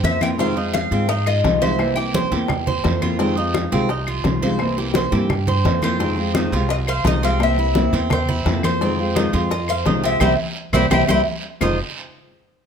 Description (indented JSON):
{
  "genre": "latin, Cuban son and guajira",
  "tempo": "171 BPM",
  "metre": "4/4",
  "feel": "straight",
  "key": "F minor",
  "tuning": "A4 = 435 Hz",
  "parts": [
    { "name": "Cuban tres", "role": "melody", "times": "0.0-2.5, 5.8-11.8 s", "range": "C5 to G5", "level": "-23 LUFS", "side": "left 2 dB", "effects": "none" },
    { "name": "nylon-string guitar", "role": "accompaniment", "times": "0.0-11.8 s", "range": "F2 to F4", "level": "-23 LUFS", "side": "left 2 dB", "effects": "none" },
    { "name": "Cuban tres", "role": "arpeggios", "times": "0.0-11.8 s", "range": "C4 to Eb5", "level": "-25 LUFS", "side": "right 6 dB", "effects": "none" },
    { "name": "upright bass", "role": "bass", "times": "0.0-11.8 s", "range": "F1 to Ab2", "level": "-23 LUFS", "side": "equal", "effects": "none" },
    { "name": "bongos", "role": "percussion", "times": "0.0-11.7 s", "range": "none", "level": "-28 LUFS", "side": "left 7 dB", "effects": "none" },
    { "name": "congas", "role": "percussion", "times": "0.0-11.7 s", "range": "none", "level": "-25 LUFS", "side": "left 1 dB", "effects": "none" },
    { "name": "guiro", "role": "percussion", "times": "0.0-11.7 s", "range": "none", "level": "-34 LUFS", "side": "right 6 dB", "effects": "none" },
    { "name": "claves", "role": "percussion", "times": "0.2-11.7 s", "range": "none", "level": "-32 LUFS", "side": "left 4 dB", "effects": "none" }
  ],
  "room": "light reverb",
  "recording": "none",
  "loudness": "-17 LUFS",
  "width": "side -7 dB against mid",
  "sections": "0.0-6.0 A section; 6.0-11.6 B section; 11.6-12.7 C section",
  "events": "drum fill 0.0-0.4; band accent 10.2-11.6",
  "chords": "0.4 Fm7; 1.8 C7; 3.2 Fm7; 4.6 C7; 6.0 Fm7; 7.4 C7; 8.8 Fm7; 10.2 C7; 11.6 Fm7",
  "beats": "0.04 | 0.39 0.74 1.09 1.44 | 1.79 2.14 2.49 2.85 | 3.20 3.55 3.90 4.25 | 4.60 4.95 5.30 5.65 | 6.00 6.35 6.71 7.06 | 7.41 7.76 8.11 8.46 | 8.81 9.16 9.51 9.86 | 10.21 10.56 10.91 11.27 | 11.62"
}